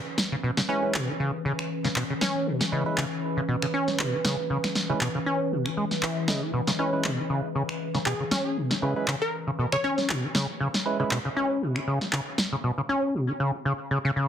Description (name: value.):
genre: acid house.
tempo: 118 BPM.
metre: 4/4.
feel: swing 55% on 16ths.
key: unclear.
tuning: A4 = 440 Hz.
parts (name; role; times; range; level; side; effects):
warbly tape-like pad; sustained chords; 0.0-12.6 s; Fb3 to Cb5; -33 LUFS; left 1 dB; chorus, built-in reverb, vintage 12-bit sampler grit.
electronic snare drum, handclaps and finger snaps; drums; 0.2-12.5 s; none; -29 LUFS; equal; none.
liquid acid bass; riff; 0.3-14.3 s; Cb3 to Db4; -27 LUFS; equal; chorus, overdrive, tape echo.
percussive organ stab; stabs; 0.7-11.2 s; Ab3 to Eb5; -33 LUFS; right 4 dB; chorus, tape echo.
glassy wavetable pluck; melody; 8.1-9.9 s; Ab4 to Db5; -32 LUFS; equal; chorus, tape echo.
room: wet studio ambience, RT60 0.5 s.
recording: heavily compressed radio sound, multiband compression.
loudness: -24 LUFS.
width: side -9 dB against mid.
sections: 0.0-14.3 A section.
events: none.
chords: 0.0 Dbm7.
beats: | 0.43 0.94 1.45 1.96 | 2.47 2.98 3.48 3.99 | 4.50 5.01 5.52 6.03 | 6.54 7.04 7.55 8.06 | 8.57 9.08 9.59 10.09 | 10.60 11.11 11.62 12.13 | 12.64 13.14 13.65 14.16.